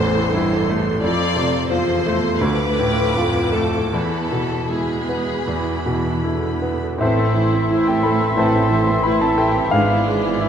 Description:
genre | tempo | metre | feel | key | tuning
classical, romantic movement for piano and orchestra | 76-91 BPM | 4/4 | rubato | A minor | A4 = 440 Hz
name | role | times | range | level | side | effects
clear grand piano | melody | 0.0-10.5 s | A1 to C6 | -19 LUFS | equal | none
rich studio violin section | melody | 0.0-10.5 s | E4 to D6 | -30 LUFS | left 4 dB | none
rich studio violin section | second line | 0.0-10.5 s | E4 to D5 | -26 LUFS | left 5 dB | none
rich studio viola section | accompaniment | 0.0-10.5 s | D3 to A4 | -26 LUFS | right 3 dB | none
rich studio cello section | bass | 0.0-10.5 s | D2 to A2 | -26 LUFS | right 3 dB | none
bright flute section | second line | 7.0-10.5 s | B5 to C6 | -27 LUFS | left 6 dB | none
clear oboe | second line | 7.0-10.5 s | D5 to E5 | -28 LUFS | right 1 dB | none
warm clarinet | second line | 7.0-10.5 s | E4 | -28 LUFS | right 2 dB | none
warm bassoon | accompaniment | 7.0-10.5 s | E3 | -28 LUFS | right 5 dB | none
dark French horn section | sustained chords | 7.0-10.0 s | E3 to D4 | -28 LUFS | left 2 dB | none
rich studio double bass section | bass | 7.0-10.5 s | G#1 to A1 | -27 LUFS | right 3 dB | none
room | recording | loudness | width
moderate scoring stage reverb, RT60 1.6 s | none | -16 LUFS | side -8 dB against mid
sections
0.0-7.0 A section; 7.0-10.5 B section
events
none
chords
0.0 Am; 1.0 F; 2.4 Dm; 3.9 E; 7.0 Am; 9.7 E7/G#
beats
0.33 | 1.02 1.71 2.42 3.16 | 3.93 4.71 5.49 6.26 | 7.01 7.71 8.38 9.05 | 9.73 10.41

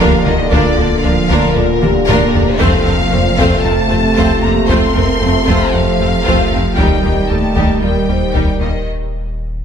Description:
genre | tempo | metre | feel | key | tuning
cinematic, hybrid orchestral and electronic film score | 115 BPM | 4/4 | straight | unclear | A4 = 441 Hz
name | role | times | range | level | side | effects
rich symphonic violin section | melody | 0.0-8.9 s | Bb4 to C6 | -21 LUFS | left 4 dB | none
clear symphonic violin section | second line | 0.0-8.7 s | Eb4 to C5 | -22 LUFS | left 2 dB | none
clear symphonic viola section | accompaniment | 0.0-8.7 s | G3 to Eb4 | -20 LUFS | right 2 dB | none
bright trombone section | sustained chords | 0.0-8.9 s | Bb2 to A3 | -21 LUFS | right 4 dB | none
mellow French horn section | sustained chords | 0.0-8.9 s | F4 to C5 | -22 LUFS | left 4 dB | none
warm analog pad | sustained chords | 0.0-8.9 s | G3 to F5 | -24 LUFS | equal | chorus
rubbery square bass | riff | 0.0-8.8 s | D2 to F2 | -20 LUFS | left 2 dB | none
pure sine sub bass | bass | 0.0-9.6 s | D1 to F1 | -22 LUFS | equal | none
rich symphonic cello section | bass | 0.0-8.9 s | Bb2 to C4 | -20 LUFS | right 3 dB | none
warm chamber double bass section | bass | 0.0-8.7 s | D2 to F2 | -22 LUFS | right 3 dB | none
solo taiko drums | drums | 0.0-8.8 s | none | -20 LUFS | equal | none
room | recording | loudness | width
moderate concert hall reverb, RT60 2.4 s | none | -11 LUFS | side -8 dB against mid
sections
0.0-9.6 A section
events
drum fill 1.8-2.6; break 8.9-9.6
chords
0.0 Bb/D; 2.6 F; 6.8 Eb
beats
0.00 | 0.52 1.04 1.56 2.08 | 2.60 3.13 3.65 4.17 | 4.69 5.21 5.74 6.26 | 6.78 7.30 7.82 8.34 | 8.87 9.39

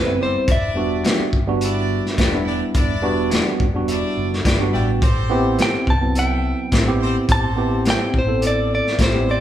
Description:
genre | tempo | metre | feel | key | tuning
straight-eighth soul blues | 106 BPM | 4/4 | straight | E minor | A4 = 440 Hz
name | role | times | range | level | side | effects
direct-recorded clean electric guitar | melody | 0.0-2.2, 5.6-9.4 s | B4 to A5 | -22 LUFS | left 1 dB | spring reverb
bright tine electric piano | accompaniment | 0.0-9.4 s | F#3 to G5 | -22 LUFS | right 2 dB | medium stereo tremolo
electric guitar through a small old amp | stabs | 0.0-9.2 s | A2 to G4 | -28 LUFS | left 3 dB | spring reverb
hollow-body short-scale fingered electric bass | bass | 0.0-9.4 s | E1 to C2 | -24 LUFS | equal | none
brilliant horn section | sustained chords | 0.2-9.4 s | C4 to E5 | -29 LUFS | equal | none
crunchy breakbeat drum kit | drums | 0.5-9.1 s | hi-hat, kick drum, snare drum | -20 LUFS | equal | none
room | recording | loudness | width
moderate large studio reverb, RT60 1.0 s | band playing live in one room | -16 LUFS | side -11 dB against mid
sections
0.0-9.4 A section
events
tine electric piano fill 4.2-5.0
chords
0.5 Em7; 5.0 Am7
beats
| 0.48 1.05 1.62 2.18 | 2.75 3.32 3.89 4.45 | 5.02 5.59 6.15 6.72 | 7.29 7.85 8.42 8.98

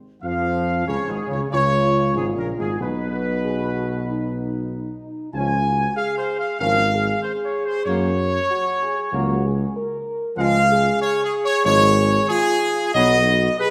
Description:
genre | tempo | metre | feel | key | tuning
classical | 94 BPM | 4/4 | straight | Db major | A4 = 439 Hz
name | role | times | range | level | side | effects
warm trumpet section | melody | 0.2-13.7 s | Ab4 to Ab5 | -23 LUFS | equal | none
mellow French horn section | sustained chords | 0.2-13.7 s | Eb4 to Bb4 | -29 LUFS | equal | none
mellow trombone section | sustained chords | 0.2-13.2 s | Ab2 to Db4 | -31 LUFS | equal | none
dark tuba | bass | 0.2-13.5 s | Ab1 to Gb2 | -26 LUFS | equal | none
room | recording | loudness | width
wet scoring stage reverb, RT60 1.6 s | none | -21 LUFS | mono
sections
0.2-13.7 A section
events
none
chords
0.2 Db; 2.8 Cb; 5.3 Db; 7.9 Gb; 10.4 Db; 12.9 Cb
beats
| 0.24 0.89 1.53 2.17 | 2.81 3.45 4.08 4.71 | 5.35 5.97 6.60 7.23 | 7.86 8.49 9.12 9.75 | 10.38 11.01 11.65 12.29 | 12.95 13.59

